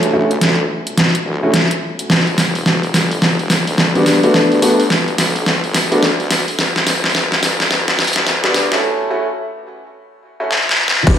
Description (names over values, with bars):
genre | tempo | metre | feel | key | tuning
glitch hop | 107 BPM | 4/4 | swing 62% on 16ths | E dorian | A4 = 440 Hz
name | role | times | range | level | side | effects
warm baby grand piano | stabs | 0.0-11.2 s | G3 to F#4 | -16 LUFS | equal | vintage 12-bit sampler grit, sidechain pumping, low-pass filter, digital delay
wobble bass | bass | 0.0-11.2 s | E1 to G2 | -22 LUFS | left 1 dB | chorus, tube saturation, high-pass filter
dubstep drum kit | drums | 0.0-11.2 s | crash cymbal, hi-hat, snare drum | -14 LUFS | equal | overdrive
electronic kick drum | drums | 11.1-11.2 s | none | -11 LUFS | left 1 dB | overdrive
room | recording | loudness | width
wet studio reverb, RT60 0.5 s | played on a big sound system in a bare room, large studio reverb, high-pass filter | -12 LUFS | side -9 dB against mid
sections
0.0-11.1 A section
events
build-up 0.0-11.1; drum fill 0.0-8.8, 10.5-11.1; filter sweep on grand piano 0.0-11.1; filter sweep 0.0-11.1; break 8.8-11.1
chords
0.0 Dmaj7; 2.1 Em7; 4.3 Gmaj7; 6.6 Em7; 8.8 A6